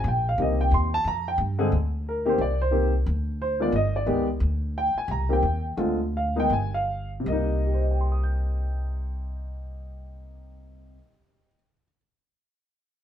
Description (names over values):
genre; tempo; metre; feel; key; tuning
jazz piano trio; 152-179 BPM; 4/4; swing 62% on 8ths; C minor; A4 = 440 Hz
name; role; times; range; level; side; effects
warm baby grand piano; melody; 0.0-12.0 s; C3 to G6; -25 LUFS; left 1 dB; none
upright bass; bass; 0.0-11.0 s; G1 to G2; -26 LUFS; equal; none
room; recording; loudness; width
moderate studio reverb, RT60 0.9 s; band playing live in one room; -23 LUFS; side -10 dB against mid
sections
0.0-1.7 A section; 1.7-7.3 B section; 7.3-10.4 C section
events
slowing down 4.4-7.3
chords
0.4 Cm7; 1.7 C7sus2/D; 2.4 Cm7; 3.1 N.C.; 3.7 G; 4.4 Dsus4; 5.1 Cm7; 5.8 Dm7b5; 6.5 Fmadd9/G; 7.3 Cm7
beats
0.04 | 0.38 0.71 1.05 1.38 | 1.72 2.05 2.39 2.73 | 3.06 3.40 3.73 4.07 | 4.41 4.74 5.08 5.43 | 5.78 6.13 6.50 6.88 | 7.26 7.66 8.05 8.45 | 8.85 9.24 9.63 10.03